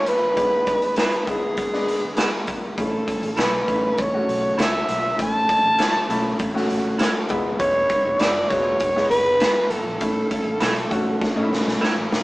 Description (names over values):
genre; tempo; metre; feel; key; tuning
uptempo 1960s-style soul; 100 BPM; 4/4; straight; A major; A4 = 440 Hz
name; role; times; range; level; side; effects
raspy alto saxophone; melody; 0.0-11.8 s; G#4 to A5; -21 LUFS; equal; none
warm upright piano; accompaniment; 0.0-12.2 s; G#3 to F#4; -26 LUFS; left 1 dB; none
raw garage drum kit; drums; 0.1-12.2 s; hi-hat, kick drum, snare drum; -24 LUFS; equal; none
electric guitar through a small old amp; stabs; 1.0-11.9 s; E4 to E5; -27 LUFS; right 2 dB; phaser
vintage muted fingered electric bass; bass; 2.8-12.2 s; E1 to A2; -37 LUFS; equal; none
room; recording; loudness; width
moderate stone room reverb, RT60 1.1 s; band playing live in one room, small speaker sound; -18 LUFS; side -19 dB against mid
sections
0.0-12.2 A section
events
drum fill 11.2-12.2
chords
0.0 E; 2.8 A; 7.3 E; 10.0 A